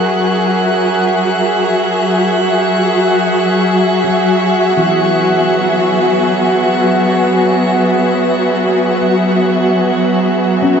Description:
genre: ambient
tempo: free time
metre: none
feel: none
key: unclear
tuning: A4 = 442 Hz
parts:
  - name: dark chamber string section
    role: sustained chords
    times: 0.0-10.8 s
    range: F#3 to E5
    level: -12 LUFS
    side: equal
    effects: shimmer reverb
  - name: felt-muted upright piano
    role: arpeggios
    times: 0.0-10.8 s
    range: E3 to E5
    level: -23 LUFS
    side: left 3 dB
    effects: tape echo, shimmer reverb
  - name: organ-like drone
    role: drone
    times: 0.4-10.8 s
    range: F#3 to F#4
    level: -21 LUFS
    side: right 2 dB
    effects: none
  - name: drifting glass-harmonics texture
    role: texture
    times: 0.0-10.8 s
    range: F#5 to F#6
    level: -20 LUFS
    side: right 3 dB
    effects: chorus, built-in reverb, shimmer reverb
room: wet huge ambient reverb, RT60 7.3 s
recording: nothing above 8.0 kHz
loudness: -11 LUFS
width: side -7 dB against mid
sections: 0.0-10.8 A section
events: fade-in on felt piano 0.0-10.8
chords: 0.0 F#9; 4.1 Eadd9

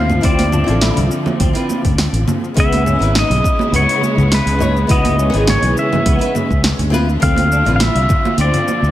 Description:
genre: sunset chillout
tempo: 103 BPM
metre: 4/4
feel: straight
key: unclear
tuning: A4 = 440 Hz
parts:
  - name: pedal steel guitar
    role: melody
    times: 0.0-8.9 s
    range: B4 to F5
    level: -19 LUFS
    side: left 1 dB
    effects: ping-pong delay
  - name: flamenco guitar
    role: accompaniment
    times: 0.0-7.8 s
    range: D#3 to C#5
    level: -22 LUFS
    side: moving between left 4 dB and right 3 dB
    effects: auto-pan, digital delay
  - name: dark studio string section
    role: sustained chords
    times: 0.0-8.9 s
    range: C#3 to F4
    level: -22 LUFS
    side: left 1 dB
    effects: none
  - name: fretless electric bass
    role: bass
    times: 0.0-8.9 s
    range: G#1 to D2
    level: -16 LUFS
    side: equal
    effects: none
  - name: deep house drum kit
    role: drums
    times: 0.1-8.9 s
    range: congas, hi-hat, shaker, snare drum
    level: -20 LUFS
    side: left 1 dB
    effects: overdrive, small room ambience
  - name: semi-hollow electric guitar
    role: arpeggios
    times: 0.2-8.7 s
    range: B3 to E4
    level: -25 LUFS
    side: left 2 dB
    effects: ensemble chorus, digital delay
  - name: electronic kick drum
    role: drums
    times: 0.2-8.2 s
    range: none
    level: -17 LUFS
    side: equal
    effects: overdrive, small room ambience
  - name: congas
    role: percussion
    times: 0.4-8.8 s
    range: none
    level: -24 LUFS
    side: right 6 dB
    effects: none
room: light reverb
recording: none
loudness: -12 LUFS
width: side -13 dB against mid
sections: 0.0-8.9 A section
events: none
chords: 0.0 Dm9; 2.6 C#m9; 6.9 Dm9

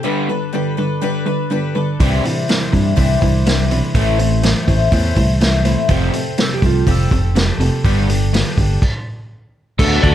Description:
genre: folk rock and heartland rock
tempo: 123 BPM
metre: 4/4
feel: straight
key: unclear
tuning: A4 = 441 Hz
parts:
  - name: picked twelve-string acoustic guitar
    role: accompaniment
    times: 0.0-10.1 s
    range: A2 to C5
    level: -22 LUFS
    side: left 6 dB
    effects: none
  - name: crunchy overdriven guitar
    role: riff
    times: 0.0-10.1 s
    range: F2 to F#4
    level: -20 LUFS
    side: right 1 dB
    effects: none
  - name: fingered electric bass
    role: bass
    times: 2.0-10.1 s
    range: F1 to G2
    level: -16 LUFS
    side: equal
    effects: none
  - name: vintage drum kit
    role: drums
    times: 2.0-10.1 s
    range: crash cymbal, hi-hat, kick drum, snare drum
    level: -17 LUFS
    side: equal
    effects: none
  - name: mellow electric guitar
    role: second line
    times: 5.9-7.4 s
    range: F4 to C5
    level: -24 LUFS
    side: right 8 dB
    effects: none
  - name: lightly driven lead guitar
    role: melody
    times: 9.8-10.1 s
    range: A4 to D5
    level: -19 LUFS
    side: left 2 dB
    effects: none
room: little or no reverb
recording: dark, warm production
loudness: -14 LUFS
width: side -11 dB against mid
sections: 0.0-9.8 A section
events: stop 8.8-9.8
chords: 0.1 Gadd9; 2.0 Cadd9; 3.9 Am; 5.9 Fadd9; 7.8 Gadd9

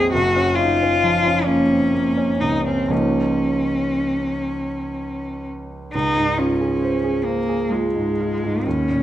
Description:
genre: classical, impressionist duo for cello and grand piano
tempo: 38-47 BPM (dotted quarters)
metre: 6/8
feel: rubato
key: Db major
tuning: A4 = 436 Hz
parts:
  - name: rich cello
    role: melody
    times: 0.0-9.0 s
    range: Ab3 to Ab4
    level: -20 LUFS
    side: left 1 dB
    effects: none
  - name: clear grand piano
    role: accompaniment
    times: 0.0-9.0 s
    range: Gb1 to C5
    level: -21 LUFS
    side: right 2 dB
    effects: none
room: wet recital hall reverb, RT60 1.6 s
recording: none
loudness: -18 LUFS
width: side -12 dB against mid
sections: 0.0-5.9 A section; 5.9-9.0 B section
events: none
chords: 0.1 Gbmaj7; 2.9 Db69; 5.9 Dbmaj7

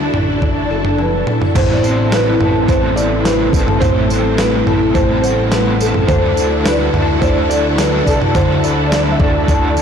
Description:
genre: dream pop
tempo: 106 BPM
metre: 4/4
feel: straight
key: A dorian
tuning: A4 = 439 Hz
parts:
  - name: string machine, full ensemble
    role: sustained chords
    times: 0.0-9.8 s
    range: C3 to A4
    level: -21 LUFS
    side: equal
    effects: ensemble chorus
  - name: fingerpicked twelve-string acoustic guitar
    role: arpeggios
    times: 0.0-9.8 s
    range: A2 to A4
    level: -18 LUFS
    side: left 3 dB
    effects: ensemble chorus, digital delay
  - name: fat analog bass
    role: bass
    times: 0.0-9.8 s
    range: F#1 to D2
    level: -20 LUFS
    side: equal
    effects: transformer saturation
  - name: clean 12-bit digital drum machine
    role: drums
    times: 0.1-9.8 s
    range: crash cymbal, kick drum, snare drum, tambourine, toms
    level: -17 LUFS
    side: right 1 dB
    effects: overdrive
  - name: felt-muted upright piano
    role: melody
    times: 1.0-9.8 s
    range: B4 to E5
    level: -20 LUFS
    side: right 3 dB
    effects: digital delay
  - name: crunchy overdriven guitar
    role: accompaniment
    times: 1.6-9.8 s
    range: A2 to A4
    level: -22 LUFS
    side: right 2 dB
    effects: tremolo, ensemble chorus
  - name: soft synth bell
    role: texture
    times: 1.7-9.8 s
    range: D5 to B5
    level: -30 LUFS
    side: right 1 dB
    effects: none
room: moderate lush hall reverb, RT60 2.1 s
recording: blown-out, overdriven recording, overdrive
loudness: -12 LUFS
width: side -7 dB against mid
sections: 0.0-1.6 A section; 1.6-9.8 B section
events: drum fill 1.0-1.6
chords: 0.0 Dadd9; 1.6 Amadd9; 6.1 Dadd9

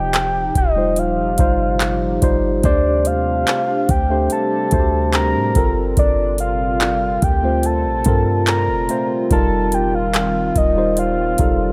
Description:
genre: contemporary R&B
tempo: 72 BPM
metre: 4/4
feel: straight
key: G minor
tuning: A4 = 440 Hz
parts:
  - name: soft octave-layered synth lead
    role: melody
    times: 0.0-11.7 s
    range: D5 to Bb5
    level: -23 LUFS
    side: equal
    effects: chorus, delay
  - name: hollow soft pad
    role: sustained chords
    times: 0.0-11.7 s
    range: Bb2 to G4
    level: -29 LUFS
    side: equal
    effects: chorus, sidechain pumping
  - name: warm 808-style bass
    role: bass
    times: 0.0-11.7 s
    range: Eb1 to A2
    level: -24 LUFS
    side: equal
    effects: none
  - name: booming analog drum machine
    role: drums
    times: 0.1-11.6 s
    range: handclaps, hi-hat, kick drum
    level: -21 LUFS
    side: equal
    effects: none
  - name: tine electric piano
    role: accompaniment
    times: 0.8-11.7 s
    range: G3 to C5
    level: -23 LUFS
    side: equal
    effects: none
room: little or no reverb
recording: none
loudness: -17 LUFS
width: mono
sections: 0.0-11.7 A section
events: none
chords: 0.0 Eb69; 2.6 D7sus4; 5.6 Gm11; 9.3 F9sus4

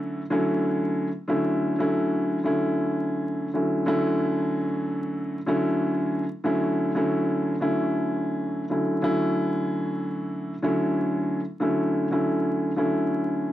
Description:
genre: hip hop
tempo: 93 BPM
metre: 4/4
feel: swing 57% on 16ths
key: D major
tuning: A4 = 441 Hz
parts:
  - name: dark grand piano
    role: solo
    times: 0.0-13.5 s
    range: D3 to E4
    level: -23 LUFS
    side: equal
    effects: cassette tape, high-pass filter, low-pass filter
room: light reverb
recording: vinyl crackle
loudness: -23 LUFS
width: side -13 dB against mid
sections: 0.0-9.0 A section; 9.0-13.5 B section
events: none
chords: 0.0 Dmaj7

